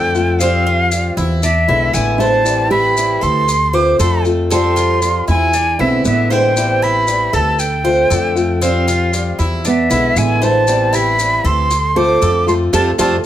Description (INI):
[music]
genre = latin, Cuban son and guajira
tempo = 117 BPM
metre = 4/4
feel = straight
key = A minor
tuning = A4 = 440 Hz
[part]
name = jazz flute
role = melody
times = 0.0-13.2 s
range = E5 to D6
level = -17 LUFS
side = equal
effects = none
[part]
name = nylon-string guitar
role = second line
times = 0.0-13.2 s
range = B3 to B4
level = -21 LUFS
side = right 5 dB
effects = none
[part]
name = fingerpicked acoustic archtop guitar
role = accompaniment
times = 0.0-13.2 s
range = D3 to F4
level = -20 LUFS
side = left 5 dB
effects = none
[part]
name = Cuban tres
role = arpeggios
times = 0.0-13.2 s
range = A3 to C5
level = -20 LUFS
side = right 2 dB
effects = none
[part]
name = upright bass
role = bass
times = 0.0-13.2 s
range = A1 to F2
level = -18 LUFS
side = equal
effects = none
[part]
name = maracas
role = percussion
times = 0.1-13.1 s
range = none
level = -25 LUFS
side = left 4 dB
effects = none
[sound]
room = moderate studio reverb, RT60 0.6 s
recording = none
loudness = -12 LUFS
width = side -11 dB against mid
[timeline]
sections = 0.0-13.3 A section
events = band accent 12.7-13.3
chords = 0.4 Fsus2; 1.4 E7; 2.5 Am7; 3.5 Dm7; 4.5 Fadd9; 5.5 E7; 6.6 Am7; 7.6 Dm7; 8.6 Fsus2; 9.6 E7; 10.7 Am7; 11.7 Dm7; 12.7 Fadd9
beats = | 0.40 0.91 1.43 1.94 | 2.45 2.97 3.48 3.99 | 4.51 5.02 5.54 6.05 | 6.56 7.08 7.59 8.10 | 8.62 9.13 9.65 10.16 | 10.67 11.19 11.70 12.22 | 12.73